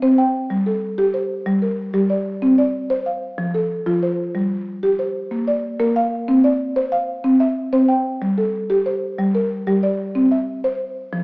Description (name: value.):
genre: southern african traditional.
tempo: 124 BPM (dotted quarters).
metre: 12/8.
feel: straight.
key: C mixolydian.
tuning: A4 = 439 Hz.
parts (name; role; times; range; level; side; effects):
buzzing marimba with soft mallets; solo; 0.0-11.2 s; F3 to G5; -17 LUFS; equal; none.
room: wet recital hall reverb, RT60 1.4 s.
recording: recorded in a church or concert hall, small speaker sound.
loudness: -17 LUFS.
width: side -31 dB against mid.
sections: 0.0-10.2 A section; 10.2-11.2 B section.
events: none.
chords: 0.5 Gm; 2.4 Csus24; 3.4 F; 4.3 Gsus4; 5.3 Bb; 6.3 C; 8.2 Gm; 10.2 C.